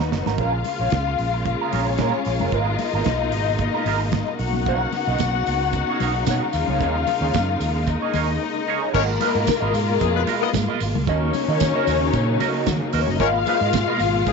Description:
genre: disco.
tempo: 112 BPM.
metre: 4/4.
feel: straight.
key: G# dorian.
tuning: A4 = 439 Hz.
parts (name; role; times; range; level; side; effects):
dark symphonic string section; second line; 0.0-14.3 s; F#3 to F#5; -24 LUFS; left 11 dB; none.
electric guitar at the edge of break-up; accompaniment; 0.0-14.3 s; G#3 to D#5; -27 LUFS; right 16 dB; wah.
warm studio string section; sustained chords; 0.0-14.3 s; B2 to F#4; -27 LUFS; equal; none.
fingered electric bass; bass; 0.0-14.3 s; F#1 to D#3; -24 LUFS; right 2 dB; none.
damped 70s drum kit; drums; 0.0-14.3 s; crash cymbal, hi-hat, kick drum, snare drum; -29 LUFS; right 7 dB; none.
congas; percussion; 0.3-13.9 s; none; -32 LUFS; left 13 dB; none.
tambourine; percussion; 4.7-14.3 s; none; -37 LUFS; right 16 dB; none.
mellow horn section; stabs; 8.9-14.3 s; E#3 to D#5; -25 LUFS; left 13 dB; none.
room: light reverb.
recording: 1960s-style stereo with parts hard left and right, nothing above 7.8 kHz.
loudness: -19 LUFS.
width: side -4 dB against mid.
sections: 0.4-8.9 A section; 8.9-14.3 B section.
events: drum fill 0.0-0.4; break 8.4-8.9.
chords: 0.4 A#m7; 2.5 G#m69; 4.4 Bmaj9; 6.5 D#7sus4; 8.9 G#m69; 11.1 D#m7; 13.2 G#m69.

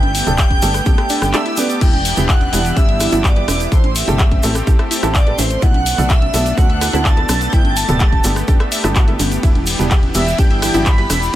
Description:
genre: progressive house.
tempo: 126 BPM.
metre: 4/4.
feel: straight.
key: E minor.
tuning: A4 = 442 Hz.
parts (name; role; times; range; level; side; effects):
warm velvety synth lead; melody; 0.0-11.3 s; C5 to B5; -23 LUFS; right 1 dB; chorus, sidechain pumping, dub echo.
rich studio violin section; second line; 0.0-11.3 s; C6 to B6; -26 LUFS; right 1 dB; sidechain pumping, dub echo.
lush unison pad; sustained chords; 0.0-11.4 s; E3 to G4; -25 LUFS; left 1 dB; chorus, sidechain pumping.
tight sequencer bass; bass; 0.0-11.3 s; D1 to D2; -20 LUFS; equal; sidechain pumping.
house drum kit; drums; 0.0-11.3 s; crash cymbal, handclaps, hi-hat, ride cymbal, rim click; -22 LUFS; left 2 dB; studio reverb.
electronic congas and toms; percussion; 0.0-11.2 s; none; -26 LUFS; right 3 dB; overdrive, sidechain pumping on perc, studio reverb, sidechain pumping on toms.
egg shaker; percussion; 0.1-11.4 s; none; -26 LUFS; right 2 dB; none.
felt-muted upright piano; stabs; 0.3-11.1 s; G3 to B4; -24 LUFS; right 2 dB; sidechain pumping, dub echo.
wide unison pluck; arpeggios; 0.4-11.1 s; D4 to E6; -26 LUFS; right 1 dB; sidechain pumping, dub echo.
electronic kick drum; drums; 0.4-11.0 s; none; -13 LUFS; equal; studio reverb.
room: little or no reverb.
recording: none.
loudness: -12 LUFS.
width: side -13 dB against mid.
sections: 0.0-11.4 A section.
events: none.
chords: 0.0 Gadd9; 1.8 Em7; 3.7 Am7; 5.6 Bm7; 7.5 Gadd9; 9.4 Em7.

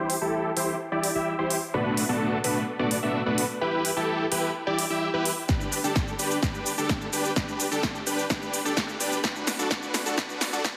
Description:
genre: EDM, festival progressive house.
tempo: 128 BPM.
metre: 4/4.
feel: straight.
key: G major.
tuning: A4 = 441 Hz.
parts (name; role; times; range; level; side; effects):
dense compressed supersaw; riff; 0.0-10.8 s; A3 to E5; -28 LUFS; equal; cassette tape, sidechain pumping, low-pass filter, tape echo.
big-room dance drum kit; drums; 0.1-10.7 s; hi-hat, shaker, snare drum; -31 LUFS; equal; overdrive.
electronic kick drum; drums; 5.5-10.7 s; none; -32 LUFS; equal; none.
room: wet lush hall reverb, RT60 2.6 s.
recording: dense, heavily limited modern master, high-pass filter.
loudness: -27 LUFS.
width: mono.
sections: 0.0-10.8 A section.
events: build-up 0.0-10.8; filter sweep on supersaw synth 0.0-10.8; filter sweep 0.0-10.8; drum fill 5.5-10.8.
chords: 0.0 C; 1.7 Bm7; 3.6 Em; 5.5 Gadd9/D; 9.2 Bm7.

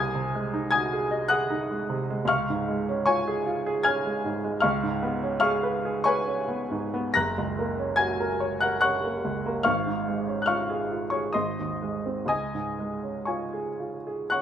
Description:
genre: classical, romantic nocturne for solo piano.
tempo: 54-78 BPM.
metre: 3/4.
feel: rubato.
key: Db major.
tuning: A4 = 440 Hz.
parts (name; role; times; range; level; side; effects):
clear baby grand piano; solo; 0.0-14.4 s; Gb1 to Bb6; -24 LUFS; equal; none.
room: moderate large studio reverb, RT60 0.9 s.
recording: none.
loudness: -24 LUFS.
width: side -9 dB against mid.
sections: 0.0-14.4 A section.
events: none.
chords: 0.0 Ab7/C; 2.3 Db; 4.6 Db7; 7.2 Gb; 9.7 Db/Ab; 11.4 Ab; 12.3 Db.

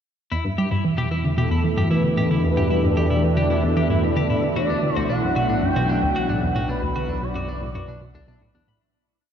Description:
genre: ambient, sequencer-driven space music.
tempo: 113 BPM.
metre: 4/4.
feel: straight.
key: E minor.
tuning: A4 = 440 Hz.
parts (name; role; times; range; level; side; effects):
expressive synth lead; melody; 0.3-8.2 s; A4 to G5; -27 LUFS; right 1 dB; ensemble chorus, shimmer reverb, analog delay.
sweeping resonant pad; sustained chords; 0.3-8.8 s; B2 to G4; -24 LUFS; equal; chorus, shimmer reverb.
twelve-string electric guitar; arpeggios; 0.3-8.8 s; D4 to B5; -31 LUFS; left 2 dB; auto-pan, shimmer reverb, analog delay.
analog pluck; riff; 0.3-8.7 s; D2 to G3; -24 LUFS; equal; chorus, analog delay.
analog drone; bass; 0.9-8.8 s; B1 to E2; -26 LUFS; equal; chorus.
wind-like tuned noise texture; texture; 0.8-8.8 s; E4 to E5; -34 LUFS; right 1 dB; built-in reverb, ensemble chorus, shimmer reverb.
room: wet lush hall reverb, RT60 3.2 s.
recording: dreamy mix soaked in reverb.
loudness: -19 LUFS.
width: side -8 dB against mid.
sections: 0.3-8.8 A section.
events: filter sweep on synth arpeggio sound 0.3-8.8; fade-out 6.0-8.8.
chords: 0.3 Em; 4.6 Bm.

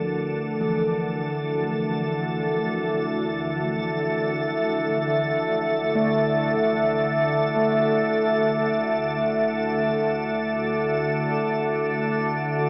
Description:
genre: dark ambient drone.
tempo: free time.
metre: none.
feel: none.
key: unclear.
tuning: A4 = 440 Hz.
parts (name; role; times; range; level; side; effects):
dark analog pad; sustained chords; 0.0-12.7 s; D4 to E5; -28 LUFS; equal; chorus.
bronze singing bowl; arpeggios; 0.0-12.4 s; E3 to A3; -33 LUFS; equal; tape echo.
organ-like drone; drone; 0.0-12.7 s; D2 to D3; -30 LUFS; equal; ensemble chorus, built-in reverb.
icy glass pad; texture; 0.0-12.7 s; A4; -30 LUFS; equal; chorus, built-in reverb.
room: wet spring reverb, RT60 2.4 s.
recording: echo-heavy mix, small speaker sound.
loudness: -24 LUFS.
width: mono.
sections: 0.0-12.7 A section.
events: none.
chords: 0.0 D5.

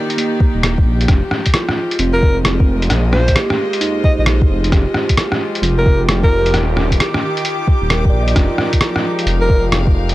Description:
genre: future garage.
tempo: 132 BPM.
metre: 4/4.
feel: swing 65% on 16ths.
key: F dorian.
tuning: A4 = 440 Hz.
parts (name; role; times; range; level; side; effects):
rich chamber string section; sustained chords; 0.0-10.1 s; Eb3 to D6; -23 LUFS; left 2 dB; sidechain pumping.
lo-fi sampler-style drum kit; drums; 0.1-10.1 s; hi-hat, rim click; -18 LUFS; equal; none.
mellow tine electric piano; accompaniment; 0.2-10.1 s; Bb3 to Eb5; -22 LUFS; right 3 dB; sidechain pumping, analog delay.
electronic kick drum; drums; 0.4-9.9 s; none; -14 LUFS; equal; none.
swelling detuned saw bass; bass; 0.5-10.1 s; Eb1 to Bb1; -16 LUFS; equal; tube saturation, sidechain pumping.
bright alto saxophone; melody; 2.1-6.6, 9.4-9.6 s; Bb4 to Eb5; -21 LUFS; equal; tape echo.
drifting glass-harmonics texture; texture; 5.5-10.1 s; G4 to G5; -27 LUFS; right 3 dB; chorus, built-in reverb.
room: little or no reverb.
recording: dry, gritty hardware recording, cassette tape.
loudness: -12 LUFS.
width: side -16 dB against mid.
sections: 0.0-10.1 A section.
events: none.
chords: 0.0 Ebmaj9; 1.1 Fm9; 6.5 Ebmaj9; 8.4 Fm9.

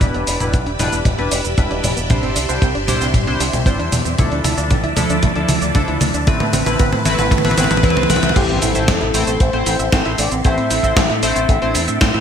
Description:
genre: italo disco.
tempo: 115 BPM.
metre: 4/4.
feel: straight.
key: A minor.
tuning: A4 = 438 Hz.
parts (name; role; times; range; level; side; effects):
phased string machine; sustained chords; 0.0-12.2 s; F3 to C6; -24 LUFS; right 1 dB; ensemble chorus, phaser.
analog pluck; arpeggios; 0.0-12.2 s; G3 to E5; -25 LUFS; right 4 dB; chorus, digital delay.
chorused polysynth; stabs; 0.0-12.2 s; F3 to C5; -21 LUFS; left 1 dB; cassette tape, digital delay.
fingered electric bass with an envelope filter; bass; 0.0-12.2 s; E1 to A2; -22 LUFS; equal; none.
gated 80s digital drum machine; drums; 0.0-12.2 s; cabasa, crash cymbal, hi-hat, snare drum, toms; -20 LUFS; left 1 dB; gated reverb, gated reverb snare.
kick drum; drums; 0.0-12.1 s; none; -15 LUFS; equal; none.
soft octave-layered synth lead; melody; 8.4-12.2 s; G4 to E5; -22 LUFS; left 2 dB; chorus, vintage 12-bit sampler grit, digital delay.
impact; sound effects; 8.4-10.4 s; none; -27 LUFS; equal; none.
room: moderate lush hall reverb, RT60 2.4 s.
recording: bright 1980s-style digital production.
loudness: -14 LUFS.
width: side -8 dB against mid.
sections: 0.0-8.4 A section; 8.4-12.2 B section.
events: drum fill 0.0-8.4; filter sweep on synth arpeggio sound 0.0-8.4; impact 8.4-10.4.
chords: 0.0 Em7; 2.1 Cadd9; 4.2 Dmadd9; 6.3 Amadd9; 8.4 Am.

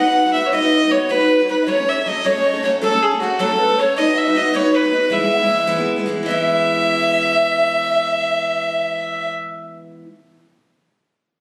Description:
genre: celtic folk, Celtic jig.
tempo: 104 BPM (dotted quarters).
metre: 6/8.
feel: straight.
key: E major.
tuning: A4 = 442 Hz.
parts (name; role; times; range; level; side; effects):
rich fiddle; melody; 0.0-9.3 s; F#4 to F#5; -20 LUFS; equal; none.
baroque flute; second line; 0.0-9.3 s; G#4 to F#5; -26 LUFS; equal; none.
breathy bright pan flute; second line; 0.0-9.3 s; G#4 to F#5; -28 LUFS; equal; none.
picked steel-string acoustic guitar; accompaniment; 0.0-10.1 s; E3 to B4; -24 LUFS; equal; none.
room: moderate recital hall reverb, RT60 1.4 s.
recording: recorded on a phone in the room, studio reverb, compression.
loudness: -17 LUFS.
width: mono.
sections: 0.0-6.3 A section; 6.3-8.6 B section.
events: none.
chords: 0.0 B; 1.7 F#m; 4.0 B; 5.1 E.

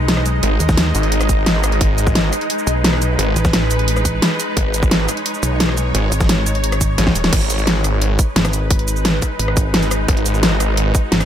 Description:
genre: dark technical drum and bass.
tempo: 174 BPM.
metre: 4/4.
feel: straight.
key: G# phrygian.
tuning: A4 = 440 Hz.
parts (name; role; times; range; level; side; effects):
swarming drone; sustained chords; 0.0-11.3 s; G#3 to D#5; -22 LUFS; equal; built-in reverb, sidechain pumping.
pulsing pluck wobble bass; bass; 0.0-11.3 s; D#1 to D#2; -18 LUFS; equal; chorus, tube saturation.
dubstep drum kit; drums; 0.1-11.3 s; cabasa, crash cymbal, hi-hat, rim click, snare drum; -18 LUFS; equal; overdrive.
snarling distorted saw bass; bass; 0.4-10.9 s; G#1; -18 LUFS; equal; distortion, overdrive, sidechain pumping.
electronic kick drum; drums; 0.7-11.0 s; none; -17 LUFS; equal; overdrive.
room: light reverb, digital ambience.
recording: none.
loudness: -14 LUFS.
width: side -10 dB against mid.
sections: 0.0-7.3 A section; 7.3-11.3 A section.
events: drop 0.0-7.3, 7.3-11.3; drum fill 7.0-7.3; band accent 7.2.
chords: 0.0 G#m.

